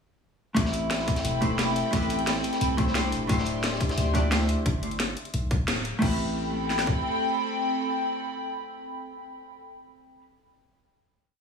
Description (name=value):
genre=liquid drum and bass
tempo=176 BPM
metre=4/4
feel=straight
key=A minor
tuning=A4 = 440 Hz
part: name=vintage hollow-body jazz guitar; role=accompaniment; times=0.5-10.2 s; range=A3 to D5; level=-29 LUFS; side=equal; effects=digital delay
part: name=airy breathy pad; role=sustained chords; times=0.8-9.5 s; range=C4 to C6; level=-30 LUFS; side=left 1 dB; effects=chorus, sidechain pumping
part: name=long sustained 808-style bass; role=bass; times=0.6-7.0 s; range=D1 to D2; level=-30 LUFS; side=equal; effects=none
part: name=crunchy breakbeat drum kit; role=drums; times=0.6-4.6 s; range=hi-hat, snare drum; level=-36 LUFS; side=right 1 dB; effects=high-pass filter on hats, high-pass filter on snare, high-pass filter on room
part: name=drum and bass drum kit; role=drums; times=0.6-7.0 s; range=kick drum, snare drum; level=-27 LUFS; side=equal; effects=overdrive
part: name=drum and bass drum kit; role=drums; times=0.6-6.1 s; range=crash cymbal, hi-hat, snare drum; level=-31 LUFS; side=left 1 dB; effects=overdrive
room=light reverb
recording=studio reverb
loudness=-24 LUFS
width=side -6 dB against mid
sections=0.6-6.0 drop; 6.0-8.7 final chord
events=drop 0.6-6.0; band accent 5.7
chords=0.6 Am9; 3.1 D9sus4; 4.7 G; 6.0 Am9